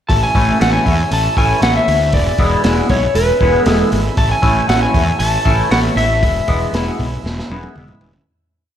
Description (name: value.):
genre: psychedelic rock.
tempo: 117 BPM.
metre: 4/4.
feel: straight.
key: E mixolydian.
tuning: A4 = 440 Hz.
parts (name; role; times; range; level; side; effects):
electric slide guitar; melody; 0.1-7.7 s; B4 to A5; -17 LUFS; left 1 dB; ping-pong delay.
combo organ; sustained chords; 0.1-8.3 s; G#3 to E5; -27 LUFS; right 6 dB; none.
fuzz picked electric bass; bass; 0.1-8.2 s; E1 to E2; -18 LUFS; equal; overdrive.
crunchy breakbeat drum kit; drums; 0.1-8.3 s; hi-hat, kick drum, snare drum, toms; -18 LUFS; equal; none.
twangy electric guitar; riff; 0.3-8.1 s; E3 to E4; -20 LUFS; left 1 dB; phaser.
room: light reverb, studio ambience.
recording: none.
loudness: -12 LUFS.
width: side -10 dB against mid.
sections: 0.1-8.3 groove.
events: fade-out 6.2-8.3; drum fill 7.3-8.3.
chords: 0.1 A; 2.1 E; 4.2 A; 6.2 E.